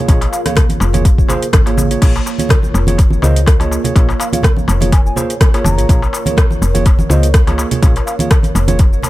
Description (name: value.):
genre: afro house.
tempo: 124 BPM.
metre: 4/4.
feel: swing 55% on 16ths.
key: Bb minor.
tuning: A4 = 440 Hz.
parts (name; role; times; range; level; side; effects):
dark analog pad; sustained chords; 0.0-9.1 s; Bb3 to F5; -24 LUFS; right 1 dB; chorus, sidechain pumping.
tine electric piano; stabs; 0.0-8.8 s; Bb3 to Db5; -22 LUFS; right 3 dB; sidechain pumping, digital delay.
woody FM bass; bass; 0.1-9.0 s; F1 to Db2; -15 LUFS; equal; sidechain pumping.
deep house drum kit; drums; 0.1-9.1 s; crash cymbal, hi-hat, rim click, shaker; -21 LUFS; left 1 dB; overdrive.
electronic kick drum; drums; 0.1-8.9 s; none; -11 LUFS; equal; overdrive.
darbuka; percussion; 0.1-9.1 s; none; -23 LUFS; left 3 dB; none.
breathy bass bansuri; melody; 0.3-8.3 s; Eb5 to Bb5; -27 LUFS; equal; tape echo.
congas; percussion; 0.5-9.1 s; none; -21 LUFS; right 3 dB; none.
room: little or no reverb.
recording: none.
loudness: -10 LUFS.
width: side -16 dB against mid.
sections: 0.0-9.1 A section.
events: none.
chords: 0.0 Bbm7.